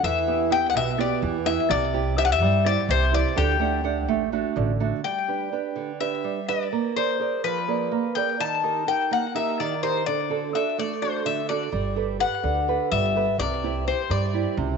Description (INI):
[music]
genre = greek folk, Greek bouzouki band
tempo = 252 BPM (eighths)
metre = 7/8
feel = straight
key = G major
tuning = A4 = 440 Hz
[part]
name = Greek bouzouki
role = melody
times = 0.0-14.6 s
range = G4 to A5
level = -25 LUFS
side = left 9 dB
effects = slapback echo
[part]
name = nylon-string guitar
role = accompaniment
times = 0.0-14.8 s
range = B2 to F#5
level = -26 LUFS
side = right 12 dB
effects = none
[part]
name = upright bass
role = bass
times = 0.0-4.9, 11.7-14.8 s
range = G1 to G2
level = -26 LUFS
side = equal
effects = none
[sound]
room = moderate plate reverb, RT60 3.3 s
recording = 1960s-style stereo with parts hard left and right, nothing above 8.0 kHz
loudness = -22 LUFS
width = side -5 dB against mid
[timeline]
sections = 0.0-5.0 A section; 5.0-14.8 B section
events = none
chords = 0.0 Em; 1.7 C; 3.4 D; 5.0 G; 6.7 Bb7; 8.4 Eb; 10.1 D; 11.7 Gadd9; 13.4 C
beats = | 0.04 0.28 0.52 0.75 0.99 1.23 1.47 | 1.71 1.95 2.18 2.42 2.66 2.90 3.14 | 3.37 3.61 3.85 4.09 4.33 4.57 4.81 | 5.04 5.28 5.52 5.76 6.00 6.24 6.48 | 6.72 6.96 7.20 7.43 7.67 7.91 8.15 | 8.39 8.63 8.87 9.11 9.35 9.59 9.82 | 10.06 10.30 10.54 10.78 11.02 11.26 11.49 | 11.73 11.97 12.21 12.45 12.69 12.92 13.16 | 13.40 13.64 13.88 14.11 14.35 14.59